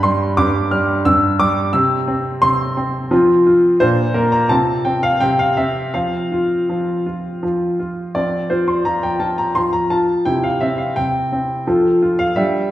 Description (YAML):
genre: classical-period piano sonatina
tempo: 86 BPM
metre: 3/4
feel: rubato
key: F major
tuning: A4 = 440 Hz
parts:
  - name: clear baby grand piano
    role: solo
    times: 0.0-12.7 s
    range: G2 to F6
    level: -15 LUFS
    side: equal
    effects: none
room: wet recital hall reverb, RT60 1.3 s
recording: heard from further back in the room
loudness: -15 LUFS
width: side -13 dB against mid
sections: 0.0-8.2 A section; 8.2-12.7 A section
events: none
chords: 0.0 G5; 1.7 C; 3.1 F5; 3.8 Bb; 4.5 F/C; 5.2 C; 5.9 F5; 10.3 C; 11.7 F